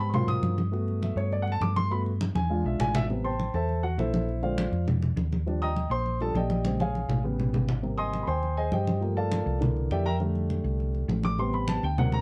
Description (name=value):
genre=Afro-Cuban jazz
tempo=202 BPM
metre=4/4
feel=straight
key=unclear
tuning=A4 = 440 Hz
part: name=dark baby grand piano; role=accompaniment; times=0.0-12.2 s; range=C3 to Eb6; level=-32 LUFS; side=equal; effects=none
part: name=hollow-body short-scale fingered electric bass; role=bass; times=0.0-12.2 s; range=Ab1 to Ab2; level=-31 LUFS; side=equal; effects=none
part: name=congas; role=percussion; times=0.0-12.2 s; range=none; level=-33 LUFS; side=equal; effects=none
room=light reverb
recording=dark, warm production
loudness=-28 LUFS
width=mono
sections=0.0-3.1 A section; 3.1-12.2 A section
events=grand piano solo 0.0-12.2; drum fill 2.4-3.1, 6.7-7.8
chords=0.1 Ab13; 0.7 Gmaj7; 2.5 E7b9; 3.1 Am7; 4.3 Bb9; 5.5 Ebmaj9; 6.7 Bbm7; 7.2 A9; 7.8 Abmaj7; 9.0 Gm9; 9.6 C9; 10.2 F69; 11.4 Am9